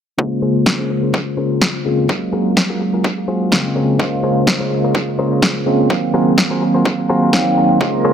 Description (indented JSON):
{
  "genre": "filtered disco house",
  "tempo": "126 BPM",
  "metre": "4/4",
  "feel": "swing 55% on 16ths",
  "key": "Bb minor",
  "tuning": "A4 = 445 Hz",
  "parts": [
    { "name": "barky tine electric piano", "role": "accompaniment", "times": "0.2-8.1 s", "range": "Db3 to F5", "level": "-15 LUFS", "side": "right 1 dB", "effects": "phaser, sidechain pumping, low-pass filter, dub echo" },
    { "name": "electronic kick drum", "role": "drums", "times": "0.2-7.9 s", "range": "none", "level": "-21 LUFS", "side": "equal", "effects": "high-pass filter on kick" },
    { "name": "direct-recorded clean electric guitar", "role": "riff", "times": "0.4-8.1 s", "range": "Db4 to C5", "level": "-24 LUFS", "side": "left 3 dB", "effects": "sidechain pumping, low-pass filter, dub echo" },
    { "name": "electronic snare drum", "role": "drums", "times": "0.7-7.4 s", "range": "none", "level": "-20 LUFS", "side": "equal", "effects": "dub echo" },
    { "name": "string machine, full ensemble", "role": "sustained chords", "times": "7.8-8.1 s", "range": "Bb4 to Bb5", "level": "-22 LUFS", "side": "right 3 dB", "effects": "ensemble chorus, sidechain pumping, low-pass filter" },
    { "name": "tambourine", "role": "percussion", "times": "7.8-8.1 s", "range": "none", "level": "barely audible", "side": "none", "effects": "none" }
  ],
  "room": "moderate plate reverb, RT60 1.1 s",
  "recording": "echo-heavy mix",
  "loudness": "-14 LUFS",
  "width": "side -8 dB against mid",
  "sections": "0.2-8.1 A section",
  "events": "filter sweep 0.2-8.1",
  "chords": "0.2 Bbm9; 2.1 Gbmaj9; 3.8 Bbm9; 5.9 Ab13",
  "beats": "| 0.19 0.66 1.14 1.61 | 2.09 2.57 3.04 3.52 | 4.00 4.47 4.95 5.42 | 5.90 6.38 6.85 7.33 | 7.80"
}